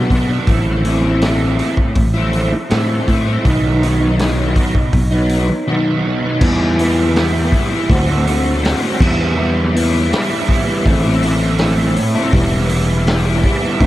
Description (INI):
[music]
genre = psychedelic rock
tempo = 81 BPM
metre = 4/4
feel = straight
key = E minor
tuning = A4 = 441 Hz
[part]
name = overdriven electric guitar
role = riff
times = 0.0-13.9 s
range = A2 to F#4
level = -16 LUFS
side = equal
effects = rotary speaker, analog delay
[part]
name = fingered electric bass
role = bass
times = 0.1-13.9 s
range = E1 to B2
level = -17 LUFS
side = equal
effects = none
[part]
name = vintage drum kit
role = drums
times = 0.1-13.9 s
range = crash cymbal, hi-hat, kick drum, snare drum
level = -18 LUFS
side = equal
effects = analog delay
[sound]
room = small room ambience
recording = echo-heavy mix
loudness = -13 LUFS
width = side -15 dB against mid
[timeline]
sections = 0.0-6.4 A section; 6.4-13.9 B section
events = none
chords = 0.5 Am; 3.4 B; 6.4 Em; 7.9 D7; 9.0 Em; 10.9 Am; 12.3 Em